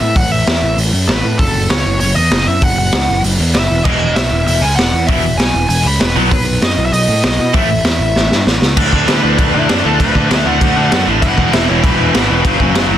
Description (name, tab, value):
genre	punk rock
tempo	195 BPM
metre	4/4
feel	straight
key	E major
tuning	A4 = 440 Hz
part	smooth overdriven lead guitar	melody	0.0-12.7 s	D4 to B5	-18 LUFS	equal	none
part	fuzz picked electric bass	bass	0.0-13.0 s	E1 to B2	-16 LUFS	equal	overdrive
part	raw garage drum kit	drums	0.2-12.8 s	crash cymbal, hi-hat, kick drum, snare drum	-14 LUFS	equal	none
part	tight distorted guitar	riff	3.9-13.0 s	E2 to D4	-18 LUFS	left 16 dB	distortion
part	tight distorted guitar	riff	3.9-13.0 s	E2 to D4	-18 LUFS	right 16 dB	distortion
room	little or no reverb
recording	dense, heavily limited modern master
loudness	-11 LUFS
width	side -11 dB against mid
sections	0.0-8.8 A section; 8.8-13.0 B section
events	drum fill 8.2-8.8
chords	0.0 A5; 1.4 N.C.; 3.7 E; 6.2 B; 7.5 A5; 8.8 D; 11.2 E5; 12.4 F#5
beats	| 0.15 0.46 0.77 1.08 | 1.39 1.70 2.01 2.31 | 2.62 2.93 3.24 3.55 | 3.86 4.17 4.47 4.78 | 5.09 5.40 5.70 6.01 | 6.32 6.63 6.93 7.24 | 7.55 7.85 8.16 8.47 | 8.77 9.08 9.38 9.69 | 10.00 10.30 10.61 10.92 | 11.22 11.53 11.84 12.14 | 12.45 12.76